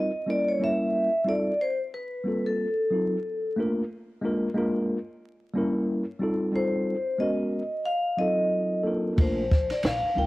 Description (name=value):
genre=hip hop, jazz-hop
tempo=91 BPM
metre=4/4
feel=swing 57% on 16ths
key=Bb major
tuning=A4 = 440 Hz
part: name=vibraphone with medium hard mallets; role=melody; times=0.0-10.3 s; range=A4 to G5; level=-26 LUFS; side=equal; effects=cassette tape
part: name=mellow tine electric piano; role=accompaniment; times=0.0-10.3 s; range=F#3 to Bb4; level=-27 LUFS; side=equal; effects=medium stereo tremolo, cassette tape
part: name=upright bass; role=bass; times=9.2-10.3 s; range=Bb1 to D2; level=-32 LUFS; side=equal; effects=none
part: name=compact cocktail drum kit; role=drums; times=9.2-10.0 s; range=hi-hat, kick drum, ride cymbal, snare drum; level=-24 LUFS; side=equal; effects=none
room=moderate spring reverb, RT60 1.7 s, small room ambience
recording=home recording on cassette, vinyl crackle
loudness=-24 LUFS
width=side -18 dB against mid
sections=0.0-10.3 A section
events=none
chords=0.0 Eb69; 0.6 Edim7; 1.3 F9; 1.9 Gm11; 2.6 F#dim7; 3.2 F; 3.9 Bb7; 5.2 Gdim7; 5.9 Edim7; 6.5 F9; 7.2 Abm11; 7.9 F7b9; 9.2 Bbmaj7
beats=0.61 | 1.27 1.93 2.59 3.25 | 3.91 4.57 5.22 5.88 | 6.54 7.20 7.86 8.52 | 9.18 9.84